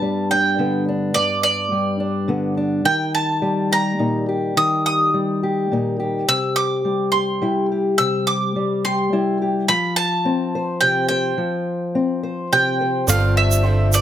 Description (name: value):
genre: indie folk with a building arrangement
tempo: 106 BPM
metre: 3/4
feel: straight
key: G mixolydian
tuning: A4 = 442 Hz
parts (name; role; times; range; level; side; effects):
- bowl-back mandolin; melody; 0.0-14.0 s; D5 to E6; -20 LUFS; right 2 dB; none
- fingerpicked old ladder-braced acoustic guitar; accompaniment; 0.0-13.1 s; G2 to C5; -20 LUFS; left 2 dB; none
- bright upright piano; accompaniment; 13.1-14.0 s; G1 to D5; -27 LUFS; right 6 dB; none
- picked twelve-string acoustic guitar; accompaniment; 13.1-14.0 s; G2 to A4; -24 LUFS; left 4 dB; none
- picked electric bass; bass; 13.1-14.0 s; G1; -16 LUFS; right 1 dB; none
- tube shaker; percussion; 13.1-14.0 s; none; -23 LUFS; right 10 dB; none
room: moderate studio reverb, RT60 0.8 s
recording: none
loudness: -17 LUFS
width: side -10 dB against mid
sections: 0.0-13.1 A section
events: none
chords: 0.0 G; 2.9 Eb; 6.3 C; 9.7 Fsus2; 13.1 Dm7/G